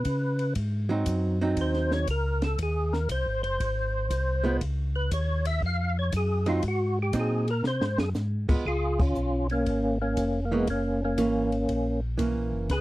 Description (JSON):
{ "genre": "soul jazz organ trio", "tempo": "119 BPM", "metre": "4/4", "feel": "swing 68% on 8ths", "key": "unclear", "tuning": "A4 = 441 Hz", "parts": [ { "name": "percussive tonewheel organ", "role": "melody", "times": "0.0-12.8 s", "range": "Ab3 to F5", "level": "-28 LUFS", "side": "equal", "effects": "slow rotary speaker, chorus vibrato" }, { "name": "mellow tonewheel organ", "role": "bass", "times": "0.0-12.8 s", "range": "F1 to Db3", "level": "-28 LUFS", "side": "equal", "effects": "slow rotary speaker" }, { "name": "compact cocktail drum kit", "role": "drums", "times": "0.0-12.8 s", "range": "crash cymbal, hi-hat, kick drum, ride cymbal, snare drum", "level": "-30 LUFS", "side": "equal", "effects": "none" }, { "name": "archtop guitar, miked and amplified", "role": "accompaniment", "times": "0.9-12.7 s", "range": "Fb3 to F4", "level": "-28 LUFS", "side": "right 3 dB", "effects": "none" } ], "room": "little or no reverb", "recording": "dry, close 1970s-style studio recording", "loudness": "-24 LUFS", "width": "side -17 dB against mid", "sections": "0.0-8.7 A section; 8.7-12.8 B section", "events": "tonewheel organ solo 0.0-8.7; drum fill 7.6-8.2; band accent 8.9", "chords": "0.0 Db7(no3); 0.6 Ab7; 4.6 Db; 6.6 Ab7; 8.7 Db7; 10.7 Gb7", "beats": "0.05 | 0.56 1.07 1.57 2.08 | 2.59 3.09 3.60 4.10 | 4.61 5.12 5.62 6.13 | 6.63 7.14 7.64 8.15 | 8.66 9.16 9.67 10.17 | 10.68 11.18 11.69 12.19 | 12.70" }